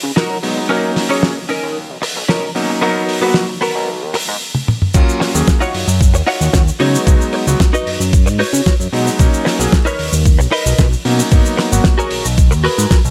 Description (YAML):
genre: nu-disco, nu disco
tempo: 113 BPM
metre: 4/4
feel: straight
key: Eb minor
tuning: A4 = 441 Hz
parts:
  - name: direct-recorded clean electric guitar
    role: riff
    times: 0.0-13.0 s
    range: Cb4 to Eb5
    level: -22 LUFS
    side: equal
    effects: ensemble chorus, low-pass filter, tape echo
  - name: fat analog bass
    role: bass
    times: 0.0-13.1 s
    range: Ab1 to Db3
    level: -20 LUFS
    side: equal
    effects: high-pass filter
  - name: damped 70s drum kit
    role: drums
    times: 0.2-13.1 s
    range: crash cymbal, hi-hat, shaker, snare drum, toms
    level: -22 LUFS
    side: equal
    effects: none
  - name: clear electric grand piano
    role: accompaniment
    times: 0.4-11.9 s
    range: Gb3 to Bb4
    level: -22 LUFS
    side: equal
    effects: sidechain pumping, tape echo
  - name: electronic kick drum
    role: drums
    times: 4.9-13.0 s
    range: none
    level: -14 LUFS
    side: equal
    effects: overdrive
room: light reverb, small room ambience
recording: none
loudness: -15 LUFS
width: mono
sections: 0.0-4.9 A section; 4.9-13.1 B section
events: build-up 0.0-4.9; drum fill 4.5-4.9; drop 4.9-13.1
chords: 0.0 Db9sus4; 0.7 Bmaj9; 2.8 Abm9; 4.9 Ebm9; 6.8 Db9sus4; 9.2 Bmaj9; 11.3 Abm9